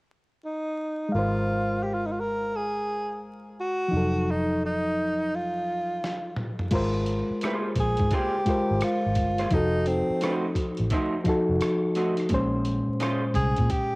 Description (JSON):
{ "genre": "R&B, neo-soul", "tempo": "86 BPM", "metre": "4/4", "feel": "swing 64% on 16ths", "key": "Ab major", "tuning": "A4 = 440 Hz", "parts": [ { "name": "breathy tenor saxophone", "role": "melody", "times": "0.5-14.0 s", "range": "C4 to Bb4", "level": "-28 LUFS", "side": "equal", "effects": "cassette tape" }, { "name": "overdriven reed electric piano", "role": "accompaniment", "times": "1.1-14.0 s", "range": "Bb2 to F5", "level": "-27 LUFS", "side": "left 1 dB", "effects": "cassette tape" }, { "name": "vintage muted fingered electric bass", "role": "bass", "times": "1.1-13.7 s", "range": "F1 to Bb2", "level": "-29 LUFS", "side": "equal", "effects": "none" }, { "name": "dusty soul sampler-style drum kit", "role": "drums", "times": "6.0-13.9 s", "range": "crash cymbal, hi-hat, kick drum, rim click, snare drum, toms", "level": "-30 LUFS", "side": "equal", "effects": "cassette tape" }, { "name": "electric guitar through a small old amp", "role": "second line", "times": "7.4-13.2 s", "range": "Ab3 to C5", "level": "-32 LUFS", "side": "right 2 dB", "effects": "cassette tape" } ], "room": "moderate spring reverb, RT60 2.7 s", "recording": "home recording on cassette, vinyl crackle", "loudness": "-24 LUFS", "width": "side -25 dB against mid", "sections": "0.0-1.1 A section; 1.1-6.7 B section; 6.7-14.0 C section", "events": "drum fill 6.0-6.7", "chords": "0.0 N.C.; 1.1 Ab69; 3.9 F7b9; 6.7 Ab69; 9.5 F7b9; 12.3 Bbm9" }